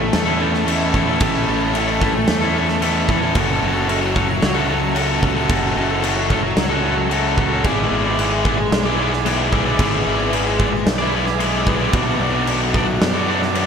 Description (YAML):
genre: post-rock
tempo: 112 BPM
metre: 4/4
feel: straight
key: A major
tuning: A4 = 441 Hz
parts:
  - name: soft additive organ-like pad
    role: sustained chords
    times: 0.0-13.7 s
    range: A4 to D6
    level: -31 LUFS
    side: left 1 dB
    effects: ensemble chorus, built-in reverb
  - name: cranked stack guitar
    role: riff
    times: 0.0-13.7 s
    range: B2 to D5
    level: -21 LUFS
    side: left 8 dB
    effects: overdrive
  - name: raw garage guitar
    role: riff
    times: 0.0-13.7 s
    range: B2 to D5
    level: -22 LUFS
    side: right 8 dB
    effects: overdrive
  - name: fuzz fingered electric bass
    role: bass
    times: 0.0-13.7 s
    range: F#1 to F#2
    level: -23 LUFS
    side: equal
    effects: overdrive
  - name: big rock drum kit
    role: drums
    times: 0.1-13.7 s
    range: crash cymbal, kick drum, snare drum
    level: -22 LUFS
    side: equal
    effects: none
room: moderate lush hall reverb, RT60 2.1 s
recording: big arena sound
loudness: -16 LUFS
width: side -7 dB against mid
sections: 0.0-13.7 A section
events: none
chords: 0.0 Amaj7; 3.4 F#m7; 7.6 E7/G#; 11.9 Bm